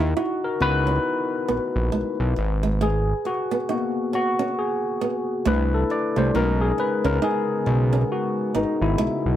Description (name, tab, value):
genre	R&B, neo-soul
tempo	68 BPM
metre	4/4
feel	swing 60% on 16ths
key	C# dorian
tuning	A4 = 442 Hz
part	nylon-string guitar	second line	0.0-9.2 s	G#3 to E4	-27 LUFS	right 5 dB	slapback echo
part	barky tine electric piano	accompaniment	0.0-9.4 s	G#3 to D5	-23 LUFS	left 2 dB	overdrive, analog chorus, plate reverb
part	fat analog bass	bass	0.0-9.4 s	G#1 to D#2	-22 LUFS	equal	none
part	hollow soft pad	sustained chords	6.3-9.4 s	C#3 to B3	-31 LUFS	right 1 dB	chorus
room	light reverb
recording	none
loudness	-20 LUFS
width	side -11 dB against mid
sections	0.0-9.4 A section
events	tine electric piano solo 0.0-9.4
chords	0.0 C#m11; 2.4 G#m9; 5.4 C69; 6.3 B69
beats	0.15 1.04 1.92 | 2.80 3.68 4.57 5.45 | 6.33 7.21 8.10 8.98